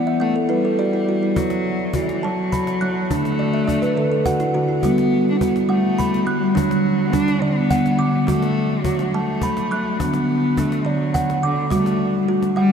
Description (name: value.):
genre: world meditative, meditative tuned percussion.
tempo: 70 BPM (dotted quarters).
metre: 6/8.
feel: straight.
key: unclear.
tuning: A4 = 440 Hz.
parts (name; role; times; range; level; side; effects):
dark cello; melody; 0.0-12.7 s; D3 to D4; -22 LUFS; left 3 dB; diffuse ambient delay.
kalimba; arpeggios; 0.0-12.7 s; D3 to F#6; -19 LUFS; right 2 dB; none.
cajon; percussion; 1.4-12.6 s; none; -29 LUFS; left 2 dB; none.
room: wet huge ambient reverb, RT60 7.4 s.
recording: in a vast, echoing space.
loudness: -17 LUFS.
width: side -7 dB against mid.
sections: 0.0-1.4 A section; 1.4-12.7 B section.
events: kalimba fill 0.0-1.4, 3.4-4.8.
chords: 0.0 Em; 1.4 F#m; 3.1 D; 4.8 G; 6.6 D; 8.3 F#m; 10.0 D; 11.7 G5.